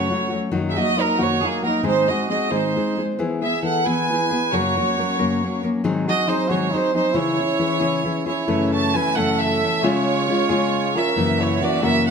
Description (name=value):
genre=mexican folk, mariachi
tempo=90 BPM (dotted quarters)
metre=6/8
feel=rubato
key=C# minor, F# minor from 8.5 s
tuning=A4 = 440 Hz
part: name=clear chamber violin section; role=melody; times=0.0-12.1 s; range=G#4 to A5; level=-22 LUFS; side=right 3 dB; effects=none
part: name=mellow trumpet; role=second line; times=0.0-12.1 s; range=A#3 to C#5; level=-26 LUFS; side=right 7 dB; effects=none
part: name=nylon-string guitar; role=accompaniment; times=0.0-12.1 s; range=F#2 to A#4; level=-22 LUFS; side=left 3 dB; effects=none
part: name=warm symphonic violin section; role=sustained chords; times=8.5-12.1 s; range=G#3 to E5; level=-31 LUFS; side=right 2 dB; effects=none
room=wet recital hall reverb, RT60 1.4 s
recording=none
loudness=-18 LUFS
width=side -6 dB against mid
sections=0.0-8.5 A section; 8.5-12.1 B section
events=none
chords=0.0 F#m; 0.5 D#m/F#; 1.8 G#; 3.2 E; 4.5 F#; 5.8 G#7; 7.1 C#m; 8.5 F#m7; 9.8 C#; 11.2 F#7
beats=| 0.52 1.18 | 1.84 2.51 | 3.19 3.86 | 4.53 5.19 | 5.84 6.49 | 7.15 7.81 | 8.49 9.17 | 9.84 10.50 | 11.16 11.82